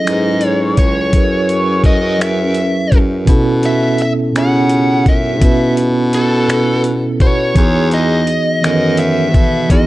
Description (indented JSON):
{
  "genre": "slow six-eight R&B",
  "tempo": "56 BPM (dotted quarters)",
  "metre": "6/8",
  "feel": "straight",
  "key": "unclear",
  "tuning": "A4 = 440 Hz",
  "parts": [
    { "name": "biting lead guitar", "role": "melody", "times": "0.0-9.9 s", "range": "A4 to F#5", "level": "-18 LUFS", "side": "left 1 dB", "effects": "overdrive" },
    { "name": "mellow tine electric piano", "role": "accompaniment", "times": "0.0-9.9 s", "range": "B2 to B4", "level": "-15 LUFS", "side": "right 2 dB", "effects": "medium stereo tremolo" },
    { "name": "bright baritone saxophone", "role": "bass", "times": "0.1-9.9 s", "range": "C#2 to C#3", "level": "-18 LUFS", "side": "equal", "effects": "none" },
    { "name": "dusty soul sampler-style drum kit", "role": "drums", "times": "0.1-9.9 s", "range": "finger snaps, hi-hat, kick drum", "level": "-13 LUFS", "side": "equal", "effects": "none" }
  ],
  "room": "little or no reverb",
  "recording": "dark, warm production",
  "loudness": "-11 LUFS",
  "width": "side -17 dB against mid",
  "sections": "0.0-9.9 A section",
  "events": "none",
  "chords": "0.0 F#m9; 3.3 B9sus4; 7.6 Emaj7"
}